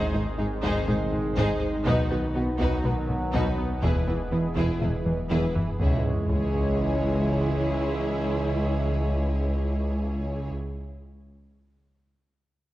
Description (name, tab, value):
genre	cinematic, hybrid orchestral and electronic film score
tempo	122 BPM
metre	4/4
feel	straight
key	C# minor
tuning	A4 = 441 Hz
part	warm symphonic violin section	melody	0.0-10.5 s	F#4 to C#5	-37 LUFS	left 2 dB	none
part	rich symphonic violin section	second line	0.0-10.5 s	D#4 to G#4	-38 LUFS	left 2 dB	none
part	warm symphonic viola section	accompaniment	0.0-10.5 s	D#4 to E4	-35 LUFS	right 1 dB	none
part	bright trombone section	sustained chords	0.0-10.3 s	G#2 to G#3	-35 LUFS	right 2 dB	none
part	mellow French horn section	sustained chords	0.0-10.3 s	B3 to E4	-35 LUFS	left 1 dB	none
part	phased analog pad	sustained chords	0.0-10.3 s	D#3 to C#5	-35 LUFS	equal	phaser, chorus
part	soft round pluck	arpeggios	0.0-5.5 s	E3 to B4	-37 LUFS	left 2 dB	none
part	fat analog bass	riff	0.0-5.7 s	E2 to B3	-32 LUFS	right 1 dB	none
part	sub bass with octave	bass	0.0-10.5 s	E1 to C#2	-33 LUFS	equal	none
part	rich symphonic double bass section	bass	0.1-10.5 s	E1 to C#2	-31 LUFS	right 1 dB	none
part	warm symphonic cello section	bass	0.2-10.5 s	C#2 to B2	-32 LUFS	right 1 dB	none
part	taiko ensemble	drums	0.6-6.8 s	none	-30 LUFS	equal	none
part	sub drop	sound effects	5.8-7.8 s	none	-33 LUFS	equal	none
room	wet scoring stage reverb, RT60 1.8 s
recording	worn, warbling old tape, cassette tape, warbly pitch drift, nothing above 10.3 kHz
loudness	-23 LUFS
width	side -15 dB against mid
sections	0.0-5.8 A section; 5.8-9.7 B section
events	drum fill 5.1-5.8; impact 5.8-7.8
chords	0.0 G#; 1.9 B; 3.8 E; 5.8 C#m